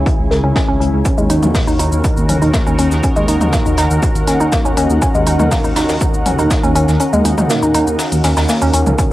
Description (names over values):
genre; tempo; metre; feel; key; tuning
melodic techno; 121 BPM; 4/4; straight; unclear; A4 = 436 Hz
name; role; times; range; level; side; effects
sweeping resonant pad; sustained chords; 0.0-9.1 s; C#3 to A#4; -24 LUFS; equal; chorus, sidechain pumping, cassette tape
dark detuned saw bass; bass; 0.0-9.0 s; C#2 to D#2; -17 LUFS; equal; sidechain pumping
overtone-sweeping drone; drone; 0.0-9.1 s; C#3 to C#4; -27 LUFS; equal; chorus, built-in reverb, sidechain pumping, cassette tape
ethereal airy pad; texture; 0.0-9.1 s; D#4 to G#5; -23 LUFS; left 1 dB; ensemble chorus, built-in reverb, sidechain pumping, cassette tape
electronic kick drum; drums; 0.1-9.1 s; none; -17 LUFS; equal; cassette tape
jazz brush drum kit; drums; 0.1-9.1 s; hi-hat, snare drum; -26 LUFS; left 1 dB; sidechain pumping on hats, high-pass filter on hats, cassette tape, high-pass filter on snare, high-pass filter on room
woody wave-folded pluck; arpeggios; 0.3-9.1 s; G#3 to A#4; -17 LUFS; equal; chorus, sidechain pumping, cassette tape, tape echo
techno drum kit; drums; 1.1-9.1 s; hi-hat, shaker, toms; -22 LUFS; equal; cassette tape
room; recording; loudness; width
moderate spring reverb, RT60 1.6 s; home recording on cassette; -12 LUFS; side -16 dB against mid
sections
0.0-9.1 A section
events
filter sweep on synth pluck 0.0-9.1; kick drops out 7.0-9.0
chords
0.0 C#m; 1.1 D#m